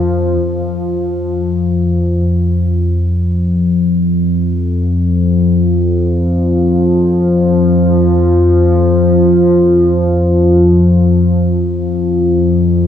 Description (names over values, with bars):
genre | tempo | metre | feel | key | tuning
ambient | free time | none | none | unclear | A4 = 439 Hz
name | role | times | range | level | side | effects
analog drone | drone | 0.0-12.9 s | F2 to F3 | -10 LUFS | left 1 dB | chorus
room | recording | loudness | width
wet cathedral reverb, RT60 5.0 s | worn, warbling old tape, cassette tape, warbly pitch drift, small room ambience | -10 LUFS | side -9 dB against mid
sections
0.4-12.9 A section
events
none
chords
none